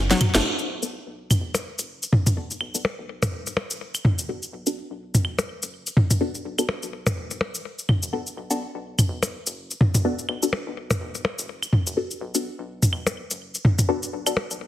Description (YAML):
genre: minimal techno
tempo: 125 BPM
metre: 4/4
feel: swing 58% on 16ths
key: B minor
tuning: A4 = 440 Hz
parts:
  - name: rubbery square bass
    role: bass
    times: 0.0-14.7 s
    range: F#1 to B1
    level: -37 LUFS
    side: equal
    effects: high-pass filter
  - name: garage drum kit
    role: drums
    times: 0.1-14.6 s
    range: cabasa, hi-hat, snare drum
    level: -26 LUFS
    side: left 1 dB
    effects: studio reverb
  - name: electronic toms, claves and percussion blips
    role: percussion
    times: 0.2-14.5 s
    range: none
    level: -22 LUFS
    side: equal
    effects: studio reverb
  - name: filtered dub chord stab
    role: stabs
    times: 0.4-14.3 s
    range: B3 to A4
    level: -27 LUFS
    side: left 2 dB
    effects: phaser, wide subtle chorus, vintage 12-bit sampler grit, ping-pong delay
room: light reverb, digital ambience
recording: heavily compressed radio sound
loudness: -22 LUFS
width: side -13 dB against mid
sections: 0.4-14.7 A section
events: drum fill 0.1-0.4; band accent 0.3; filter sweep on synth stab 0.4-14.7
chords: 0.4 B5